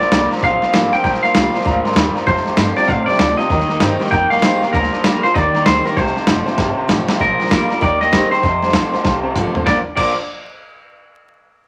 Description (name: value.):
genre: rockabilly.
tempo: 195 BPM.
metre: 4/4.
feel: swing 62% on 8ths.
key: Bb major.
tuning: A4 = 441 Hz.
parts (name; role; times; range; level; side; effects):
electric guitar through a small old amp; melody; 0.0-10.1 s; Bb4 to G5; -20 LUFS; equal; none.
honky-tonk upright piano; accompaniment; 0.0-10.2 s; C5 to C6; -29 LUFS; equal; none.
picked steel-string acoustic guitar; accompaniment; 0.0-10.1 s; F2 to G4; -27 LUFS; equal; none.
electric guitar through a small old amp; riff; 0.0-10.1 s; F2 to D4; -23 LUFS; equal; none.
upright bass; bass; 0.0-10.2 s; F1 to A2; -28 LUFS; equal; none.
boom bap sampler-style drum kit; drums; 0.0-10.1 s; crash cymbal, hi-hat, kick drum, snare drum, toms; -21 LUFS; equal; none.
room: moderate large studio reverb, RT60 1.0 s.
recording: vinyl crackle.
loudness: -16 LUFS.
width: mono.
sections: 0.0-7.2 A section; 7.2-9.7 B section; 9.7-10.9 C section.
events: drum fill 6.6-7.2, 9.0-9.7.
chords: 0.0 Bb; 2.3 F; 3.5 Eb; 4.7 Bb; 5.3 Eb; 6.0 F; 7.2 Bb; 7.8 Eb; 8.4 F; 9.7 Bb.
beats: 0.11 0.42 0.73 | 1.04 1.35 1.65 1.96 | 2.27 2.58 2.89 3.19 | 3.50 3.81 4.12 4.43 | 4.73 5.04 5.35 5.66 | 5.97 6.28 6.58 6.89 | 7.20 7.51 7.82 8.12 | 8.43 8.74 9.05 9.36 | 9.66 9.97.